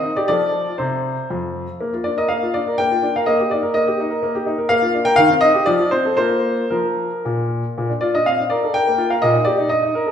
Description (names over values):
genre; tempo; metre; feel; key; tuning
classical-period piano sonatina; 113-127 BPM; 3/4; rubato; Bb major; A4 = 441 Hz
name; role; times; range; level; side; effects
clear baby grand piano; solo; 0.0-10.1 s; F2 to G5; -16 LUFS; left 1 dB; none
room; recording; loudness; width
wet recital hall reverb, RT60 1.4 s; recorded in a church or concert hall; -16 LUFS; side -8 dB against mid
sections
0.0-7.8 A section; 7.8-10.1 B section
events
none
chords
0.3 F; 1.8 Bb; 3.3 Eb/Bb; 4.7 Bb; 5.2 Cm/Eb; 5.7 F; 6.2 Bb5; 7.8 Bb; 9.2 Eb/Bb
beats
| 0.29 0.80 1.31 | 1.81 2.30 2.79 | 3.27 3.75 4.23 | 4.71 5.19 5.69 | 6.21 6.74 7.27 | 7.78 8.27 8.76 | 9.24 9.71